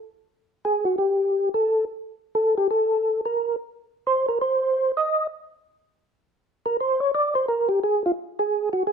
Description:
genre	jazz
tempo	175 BPM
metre	4/4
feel	swing 64% on 8ths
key	unclear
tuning	A4 = 442 Hz
part	percussive tonewheel organ	solo	0.7-8.9 s	F4 to Eb5	-21 LUFS	equal	slow rotary speaker, chorus vibrato
room	moderate studio reverb, RT60 1.0 s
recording	none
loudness	-21 LUFS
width	side -6 dB against mid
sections	0.0-7.1 A section; 7.1-8.9 A section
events	tonewheel organ solo 0.0-8.9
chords	none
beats	| 0.26 0.61 0.95 1.29 | 1.63 1.98 2.32 2.66 | 3.00 3.34 3.69 4.03 | 4.37 4.71 5.05 5.40 | 5.74 6.08 6.42 6.76 | 7.11 7.45 7.79 8.13 | 8.47 8.82

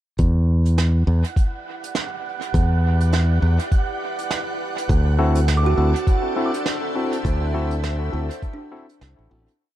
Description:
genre	ambient dub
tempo	102 BPM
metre	4/4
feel	swing 58% on 16ths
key	E minor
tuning	A4 = 443 Hz
part	soft additive organ-like pad	sustained chords	1.2-9.6 s	D4 to F#5	-31 LUFS	equal	ensemble chorus, built-in reverb
part	modern bright fingered electric bass	bass	0.2-9.5 s	A1 to E2	-18 LUFS	equal	none
part	electronic kick drum	drums	0.2-8.6 s	none	-19 LUFS	equal	none
part	vintage brush drum kit	drums	0.2-9.6 s	hi-hat, snare drum	-30 LUFS	right 5 dB	dub echo
part	wind-like tuned noise texture	texture	1.0-9.6 s	F#5	-32 LUFS	right 7 dB	built-in reverb
part	barky tine electric piano	stabs	5.2-9.5 s	C4 to A4	-25 LUFS	left 2 dB	overdrive, dub echo
part	kalimba	arpeggios	5.6-9.8 s	D4 to D6	-28 LUFS	right 6 dB	tape echo
room	little or no reverb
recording	dark, warm production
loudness	-18 LUFS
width	side -13 dB against mid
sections	0.2-9.6 groove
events	fade-in on ambient pad 0.2-9.6; fade-out 6.5-9.6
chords	0.2 Em7; 4.9 D9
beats	| 0.19 0.78 1.36 1.95 | 2.54 3.13 3.72 4.31 | 4.89 5.48 6.07 6.66 | 7.25 7.84 8.42 9.01

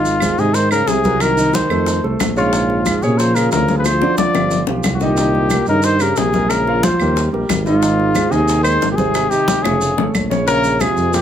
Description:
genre	Afro-Cuban jazz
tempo	181 BPM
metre	4/4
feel	straight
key	Ab major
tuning	A4 = 440 Hz
part	mellow trumpet	melody	0.0-11.2 s	F4 to D5	-18 LUFS	left 3 dB	none
part	breathy trombone	second line	0.0-11.2 s	Ab2 to F3	-22 LUFS	right 5 dB	none
part	warm grand piano	accompaniment	0.0-11.2 s	Db3 to F5	-20 LUFS	right 2 dB	none
part	breathy tuba	bass	0.0-11.2 s	F1 to Bb2	-20 LUFS	equal	none
part	congas	percussion	0.1-11.2 s	none	-24 LUFS	left 2 dB	none
part	maracas	percussion	0.1-11.2 s	none	-29 LUFS	right 4 dB	none
part	bongos	percussion	0.2-11.2 s	none	-24 LUFS	left 6 dB	none
part	claves	percussion	0.2-11.0 s	none	-27 LUFS	right 4 dB	none
room	moderate club reverb, RT60 0.5 s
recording	none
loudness	-13 LUFS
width	side -9 dB against mid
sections	0.0-10.5 A section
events	drum fill 3.9-5.2, 9.5-10.5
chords	0.0 Ab6; 1.2 Cm7b5; 1.9 F; 2.5 Bbm7; 3.9 Dm7b5; 4.5 G7b13; 5.2 Cm7; 6.5 Bbm9; 7.2 Eb; 7.8 Ab6; 9.8 Faug; 10.5 Bbm9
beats	0.21 0.54 0.87 | 1.20 1.53 1.86 2.20 | 2.53 2.86 3.19 3.52 | 3.85 4.18 4.51 4.85 | 5.18 5.51 5.84 6.17 | 6.50 6.83 7.17 7.50 | 7.83 8.16 8.49 8.82 | 9.15 9.48 9.81 10.14 | 10.47 10.80 11.14

